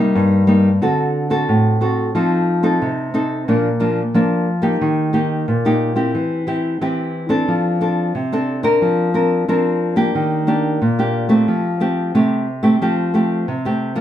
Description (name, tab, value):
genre	samba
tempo	90 BPM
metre	4/4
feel	straight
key	Bb major from 3.5 s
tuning	A4 = 440 Hz
part	nylon-string guitar	solo	0.0-14.0 s	G2 to Bb4	-15 LUFS	equal	none
room	wet studio reverb, RT60 0.6 s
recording	heard from further back in the room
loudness	-15 LUFS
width	side -11 dB against mid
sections	0.0-3.5 A section; 3.5-14.0 B section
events	none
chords	0.0 Cm7; 0.8 D7; 2.2 F7; 3.5 Bb; 4.8 Eb; 6.2 C/E; 7.5 F6; 8.8 Bbadd9/F; 10.1 Ebmaj7; 11.5 Fadd9